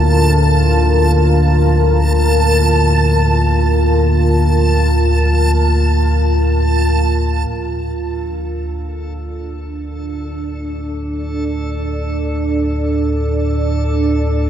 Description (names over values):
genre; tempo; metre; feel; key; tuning
dark ambient drone; free time; none; none; unclear; A4 = 440 Hz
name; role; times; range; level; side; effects
deep dark ambient pad; sustained chords; 0.0-14.5 s; D4 to D5; -19 LUFS; equal; chorus, built-in reverb, shimmer reverb
deep rumbling drone; drone; 0.0-14.5 s; D2 to A2; -15 LUFS; equal; built-in reverb
backwards swelling texture; texture; 0.0-14.5 s; A4 to A5; -23 LUFS; right 2 dB; built-in reverb, shimmer reverb
room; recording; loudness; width
wet cathedral reverb, RT60 6.2 s; none; -13 LUFS; side -9 dB against mid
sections
0.0-7.5 A section; 7.5-14.5 B section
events
fade-in on synth texture 7.5-14.5; filter sweep on synth drone 7.5-14.5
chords
0.0 Bb; 7.5 D5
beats
free time